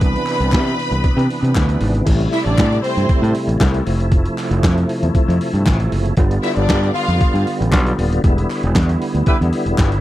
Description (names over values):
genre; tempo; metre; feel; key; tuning
disco; 117 BPM; 4/4; straight; A minor; A4 = 442 Hz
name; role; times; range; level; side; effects
clear studio string section; second line; 0.0-3.3, 6.4-7.4 s; C4 to B5; -22 LUFS; equal; none
bright tonewheel organ; sustained chords; 0.0-10.0 s; C3 to F4; -21 LUFS; equal; overdrive, chorus vibrato, slow rotary speaker
growling fingered electric bass; bass; 0.0-10.0 s; D#1 to C3; -17 LUFS; equal; overdrive
boom bap sampler-style drum kit; drums; 0.0-10.0 s; crash cymbal, hi-hat, kick drum, snare drum; -18 LUFS; equal; none
group handclap; percussion; 0.3-9.9 s; none; -29 LUFS; left 3 dB; none
clear horn section; stabs; 9.3-9.4 s; E4 to B4; -20 LUFS; right 1 dB; none
room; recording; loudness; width
little or no reverb; dry, close 1970s-style studio recording; -14 LUFS; side -15 dB against mid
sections
0.0-2.1 A section; 2.1-10.0 B section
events
band accent 8.2-10.0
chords
0.0 Cmaj9; 2.1 Am7; 3.9 Fmaj7; 6.2 G7; 8.2 Em7